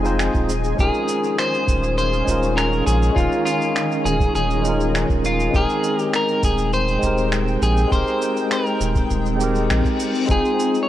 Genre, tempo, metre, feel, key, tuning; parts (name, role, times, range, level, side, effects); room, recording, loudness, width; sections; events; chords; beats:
sunset chillout; 101 BPM; 4/4; straight; A4 = 439 Hz
electric guitar at the edge of break-up; melody; 0.0-10.9 s; F4 to Db5; -22 LUFS; left 1 dB; ping-pong delay
barky tine electric piano; accompaniment; 0.0-10.9 s; Ab3 to G5; -23 LUFS; equal; auto-pan
shimmering ambient pad; sustained chords; 0.0-10.9 s; Eb3 to G5; -26 LUFS; left 1 dB; chorus, built-in reverb
warm sub bass; bass; 0.0-10.4 s; Eb1 to Bb1; -22 LUFS; equal
electronic cabasa and finger snaps; drums; 0.0-10.9 s; -29 LUFS; right 1 dB
electronic kick drum; drums; 0.3-10.4 s; -22 LUFS; equal; overdrive
reverse cymbal; sound effects; 9.4-10.3 s; -33 LUFS; left 5 dB
light reverb; worn, warbling old tape, cassette tape, warbly pitch drift; -17 LUFS; side -13 dB against mid
0.0-10.9 A section
reverse cymbal 9.4-10.3
0.5 Eb9sus4; 5.5 Abmaj9/Eb; 10.3 Fm7
0.20 | 0.79 1.38 1.98 2.57 | 3.17 3.76 4.35 4.95 | 5.54 6.14 6.73 7.33 | 7.92 8.51 9.11 9.70 | 10.29